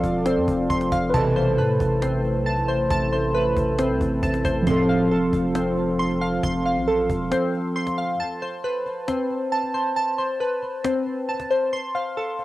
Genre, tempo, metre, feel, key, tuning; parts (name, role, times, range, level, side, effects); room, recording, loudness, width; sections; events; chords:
hip hop, trap; 136 BPM; 4/4; half-time; A minor; A4 = 442 Hz
mellow tine electric piano; accompaniment; 0.0-8.2 s; C3 to B4; -24 LUFS; equal; medium stereo tremolo, cassette tape
dark analog pad; sustained chords; 0.0-8.2 s; F3 to D5; -30 LUFS; equal; chorus, cassette tape
glassy digital keys; arpeggios; 0.0-12.4 s; C4 to C6; -23 LUFS; equal; chorus, phaser, cassette tape, tape echo
long sustained 808-style bass; bass; 0.0-7.3 s; E1 to A2; -30 LUFS; equal
cajon; drums; 0.0-12.4 s; -32 LUFS; equal
analog synth brass; stabs; 1.1-1.6, 4.7-5.1 s; C2 to F3; -27 LUFS; equal; chorus, cassette tape
light reverb; home recording on cassette; -20 LUFS; side -16 dB against mid
0.0-8.2 A section; 8.2-12.4 B section
kick muted 7.3-8.2; break 8.2-12.4
0.0 F; 1.1 Amadd9; 4.7 F; 8.2 Amadd9; 11.7 F